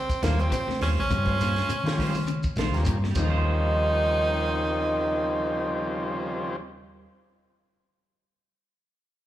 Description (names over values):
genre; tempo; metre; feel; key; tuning
afrobeat; 102 BPM; 4/4; swing 55% on 16ths; Eb mixolydian; A4 = 438 Hz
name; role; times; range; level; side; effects
edgy tenor saxophone; melody; 0.0-6.6 s; Bb3 to Eb4; -28 LUFS; equal; slapback echo
clean electric guitar; arpeggios; 0.0-3.5 s; Bb2 to Eb3; -35 LUFS; left 8 dB; tremolo
compact cocktail drum kit; drums; 0.1-3.3 s; crash cymbal, hi-hat, kick drum, snare drum; -31 LUFS; equal; none
shekere; percussion; 0.1-3.6 s; none; -37 LUFS; right 1 dB; none
clean electric guitar; stabs; 0.2-7.2 s; G3 to C5; -36 LUFS; right 8 dB; spring reverb, slapback echo
hollow-body short-scale fingered electric bass; bass; 0.2-7.1 s; Bb1 to Eb3; -27 LUFS; equal; none
congas; percussion; 0.2-3.6 s; none; -36 LUFS; equal; none
overdriven combo organ; accompaniment; 0.4-6.6 s; Db3 to C5; -31 LUFS; left 1 dB; none
bright trombone; second line; 3.2-6.6 s; Eb3; -31 LUFS; right 4 dB; none
room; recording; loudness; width
studio reverb; live gig heard through the venue's PA, club reverb; -23 LUFS; side -13 dB against mid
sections
0.0-3.5 A section; 3.5-5.8 B section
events
none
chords
0.0 Eb13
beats
0.52 | 1.10 1.69 2.28 2.87 | 3.45 4.04 4.63 5.22